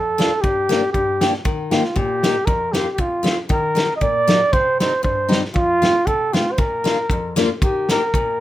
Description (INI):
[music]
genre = alpine folk, alpine dance band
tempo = 117 BPM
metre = 2/4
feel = straight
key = Bb major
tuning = A4 = 436 Hz
[part]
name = warm flugelhorn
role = melody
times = 0.0-8.4 s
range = F4 to Eb5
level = -19 LUFS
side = right 1 dB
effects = none
[part]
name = picked steel-string acoustic guitar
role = accompaniment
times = 0.0-8.4 s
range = F2 to G4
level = -23 LUFS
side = left 4 dB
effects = none
[part]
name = loose indie drum kit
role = drums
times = 0.2-8.3 s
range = kick drum, snare drum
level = -21 LUFS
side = equal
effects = none
[sound]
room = light reverb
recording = minimal, uncompressed stereo recording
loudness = -16 LUFS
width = side -14 dB against mid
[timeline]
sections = 0.0-7.6 A section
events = none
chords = 0.4 Gm; 1.5 Eb; 2.5 Fsus4; 3.0 F; 3.5 Ebm; 4.5 Cm; 5.6 F; 6.6 Bb; 7.6 Eb